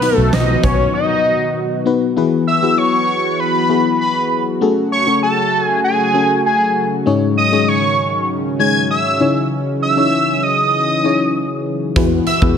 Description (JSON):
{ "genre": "1980s-style pop", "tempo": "98 BPM", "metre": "4/4", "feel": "straight", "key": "E major", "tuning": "A4 = 441 Hz", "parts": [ { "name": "fat analog lead", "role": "melody", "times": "0.0-12.4 s", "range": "B4 to G#6", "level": "-16 LUFS", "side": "right 1 dB", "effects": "chorus, phaser, ping-pong delay" }, { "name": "mellow FM electric piano", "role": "accompaniment", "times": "0.0-12.6 s", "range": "G#2 to C#5", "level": "-18 LUFS", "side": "left 4 dB", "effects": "chorus" }, { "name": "warm analog pad", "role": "sustained chords", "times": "0.0-12.6 s", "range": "C#3 to F#4", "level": "-22 LUFS", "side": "equal", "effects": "chorus" }, { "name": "big rock drum kit", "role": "drums", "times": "0.0-0.8, 12.0-12.6 s", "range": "hi-hat, kick drum, snare drum", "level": "-19 LUFS", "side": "right 1 dB", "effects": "gated reverb" }, { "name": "vintage muted picked electric bass", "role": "bass", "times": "0.2-0.9, 12.0-12.5 s", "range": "B1 to E2", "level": "-18 LUFS", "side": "equal", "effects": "none" }, { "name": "cowbell", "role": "percussion", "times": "0.3-0.8, 12.0-12.1 s", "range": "none", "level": "-31 LUFS", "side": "right 4 dB", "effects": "none" } ], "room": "moderate plate reverb, RT60 1.2 s, small room ambience", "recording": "none", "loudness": "-13 LUFS", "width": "side -7 dB against mid", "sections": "0.0-2.2 A section; 2.2-12.6 B section", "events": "break 0.9-2.2", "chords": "0.0 B; 2.2 Eadd9; 4.6 F#madd9; 7.1 G#sus4; 9.2 C#madd9; 12.0 Eadd9" }